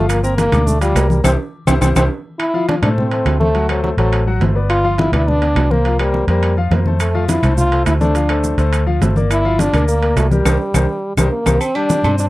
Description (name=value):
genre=latin, salsa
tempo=208 BPM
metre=4/4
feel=straight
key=F major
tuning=A4 = 440 Hz
part: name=French horn with straight mute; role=melody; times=0.0-12.3 s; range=F#3 to F4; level=-18 LUFS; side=equal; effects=none
part: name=warm baby grand piano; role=accompaniment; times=0.0-12.3 s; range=F3 to D6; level=-22 LUFS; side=left 5 dB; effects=none
part: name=vintage muted fingered electric bass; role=bass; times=0.0-12.3 s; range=G1 to A2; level=-16 LUFS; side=equal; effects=none
part: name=claves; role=percussion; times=0.1-12.2 s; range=none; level=-28 LUFS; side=left 8 dB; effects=none
part: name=congas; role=percussion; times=0.1-12.3 s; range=none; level=-21 LUFS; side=left 1 dB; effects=none
part: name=maracas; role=percussion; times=0.1-2.0, 7.0-12.3 s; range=none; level=-30 LUFS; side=right 8 dB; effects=none
part: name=timbales and agogo bells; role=percussion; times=0.1-12.2 s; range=none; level=-25 LUFS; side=right 6 dB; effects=none
room=little or no reverb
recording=dry, close 1970s-style studio recording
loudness=-13 LUFS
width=side -18 dB against mid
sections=0.0-2.4 A section; 2.4-11.6 B section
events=band accent 1.2-2.4, 10.5-11.6; drum fill 1.5-2.4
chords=0.1 Gm7; 1.2 C; 2.4 Fmaj7; 3.5 D7; 4.7 G7; 5.8 C7sus4; 7.0 Fmaj7; 8.2 Dm7; 9.3 Gm7; 10.5 C5